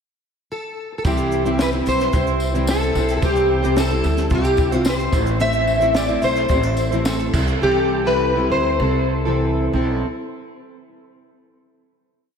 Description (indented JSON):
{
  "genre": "acoustic pop",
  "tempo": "110 BPM",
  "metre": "4/4",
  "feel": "uneven beats",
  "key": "C major",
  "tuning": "A4 = 441 Hz",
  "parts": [
    { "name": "fingerpicked plugged-in steel-string acoustic guitar", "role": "melody", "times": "0.5-9.7 s", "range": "G4 to E5", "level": "-21 LUFS", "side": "left 1 dB", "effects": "ensemble chorus, analog delay" },
    { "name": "fingerpicked plugged-in steel-string acoustic guitar", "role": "accompaniment", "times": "1.0-10.1 s", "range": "A2 to C5", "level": "-22 LUFS", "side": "equal", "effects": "double-tracked left and right" },
    { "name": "nylon-string guitar", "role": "arpeggios", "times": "1.0-8.2 s", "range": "G3 to A4", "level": "-32 LUFS", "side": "right 4 dB", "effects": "none" },
    { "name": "upright bass", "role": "bass", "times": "1.0-10.0 s", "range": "A1 to D2", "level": "-23 LUFS", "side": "equal", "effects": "none" },
    { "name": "compact cocktail drum kit", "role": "drums", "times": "1.0-7.6 s", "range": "crash cymbal, kick drum, shaker, snare drum", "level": "-24 LUFS", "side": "equal", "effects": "none" },
    { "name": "tambourine", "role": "percussion", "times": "1.1-7.5 s", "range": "none", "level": "-37 LUFS", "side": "left 2 dB", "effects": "none" }
  ],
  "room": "moderate lush hall reverb, RT60 2.8 s",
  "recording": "dreamy mix soaked in reverb",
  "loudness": "-16 LUFS",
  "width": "side -6 dB against mid",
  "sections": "0.0-1.1 pickup bar; 1.1-10.0 chorus",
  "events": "slowing down 5.4-10.0",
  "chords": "0.0 N.C.; 1.1 C; 5.1 Am; 7.3 C6"
}